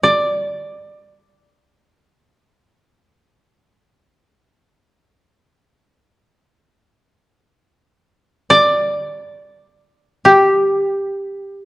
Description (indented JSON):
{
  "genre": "japanese traditional, Japanese chamber music",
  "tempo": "free time",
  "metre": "none",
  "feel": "none",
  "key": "unclear",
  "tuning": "A4 = 440 Hz",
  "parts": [
    { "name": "koto", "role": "solo", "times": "0.0-11.7 s", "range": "G4 to D5", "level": "-13 LUFS", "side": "equal", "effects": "none" }
  ],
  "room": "wet recital hall reverb, RT60 1.5 s",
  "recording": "worn, warbling old tape, cassette tape, warbly pitch drift",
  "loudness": "-13 LUFS",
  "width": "side -20 dB against mid",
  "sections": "0.0-11.7 A section",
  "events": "none",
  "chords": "none"
}